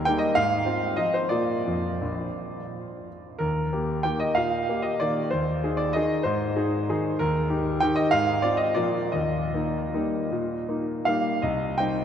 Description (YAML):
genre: classical, piano waltz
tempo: 146-205 BPM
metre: 3/4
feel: rubato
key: Eb major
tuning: A4 = 440 Hz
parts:
  - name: clear concert grand piano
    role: solo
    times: 0.0-12.0 s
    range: Bb1 to G5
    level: -23 LUFS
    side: equal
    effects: none
room: wet cathedral reverb, RT60 6.1 s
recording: in a vast, echoing space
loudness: -23 LUFS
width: side -8 dB against mid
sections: 0.0-11.4 A section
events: none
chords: 0.4 Fm/Ab; 1.3 Bb; 3.4 Eb; 5.3 Ab/Eb; 7.2 Eb; 8.1 Fm/Ab; 8.8 Bb; 9.1 Eb; 11.4 Cm